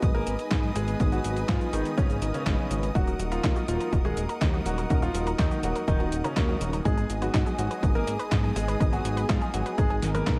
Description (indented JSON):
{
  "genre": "italo disco",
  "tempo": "123 BPM",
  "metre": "4/4",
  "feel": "straight",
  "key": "unclear",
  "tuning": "A4 = 441 Hz",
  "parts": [
    { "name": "clear concert grand piano", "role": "melody", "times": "0.0-10.4 s", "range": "Db3 to Bb4", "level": "-35 LUFS", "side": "equal", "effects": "delay" },
    { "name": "rich symphonic string section", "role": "sustained chords", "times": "0.0-10.4 s", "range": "Ab4 to Eb6", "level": "-38 LUFS", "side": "equal", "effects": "none" },
    { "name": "mellow synth brass", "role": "stabs", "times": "0.0-10.4 s", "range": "Ab3 to Cb5", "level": "-37 LUFS", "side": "equal", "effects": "chorus, cassette tape" },
    { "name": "chorused synth bass", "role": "bass", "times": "0.0-10.4 s", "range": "Eb1 to Ab2", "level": "-32 LUFS", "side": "equal", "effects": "tube saturation" },
    { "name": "clean 12-bit digital drum machine", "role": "drums", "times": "0.0-10.4 s", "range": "cabasa, handclaps, hi-hat, snare drum, toms", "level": "-36 LUFS", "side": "equal", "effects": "gated reverb" },
    { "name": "electronic kick drum", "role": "drums", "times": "0.0-10.4 s", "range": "none", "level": "-28 LUFS", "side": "equal", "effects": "none" },
    { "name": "analog pluck", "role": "arpeggios", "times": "3.0-10.4 s", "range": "Eb4 to Cb5", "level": "-39 LUFS", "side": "equal", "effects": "none" }
  ],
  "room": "light reverb",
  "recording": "none",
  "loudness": "-26 LUFS",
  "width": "mono",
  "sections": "0.0-10.4 A section",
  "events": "drum fill 10.0-10.4",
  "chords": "0.0 Abm; 3.0 Ebm; 6.9 Abm"
}